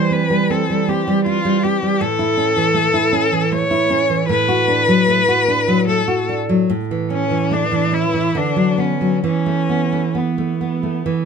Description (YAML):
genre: romantic duo for cello and classical guitar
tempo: 65-81 BPM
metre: 3/4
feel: rubato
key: A major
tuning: A4 = 440 Hz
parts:
  - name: rich cello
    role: melody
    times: 0.0-11.2 s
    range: B3 to C#5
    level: -18 LUFS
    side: left 3 dB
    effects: none
  - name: nylon-string guitar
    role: accompaniment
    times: 0.0-11.2 s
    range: A2 to F#4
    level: -17 LUFS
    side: right 2 dB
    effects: none
room: light reverb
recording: close, detailed microphones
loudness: -15 LUFS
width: side -6 dB against mid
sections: 0.0-11.2 A section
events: none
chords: 0.0 C/E; 2.0 A; 4.3 D/A; 6.7 A; 8.3 Bm/D; 9.2 Esus4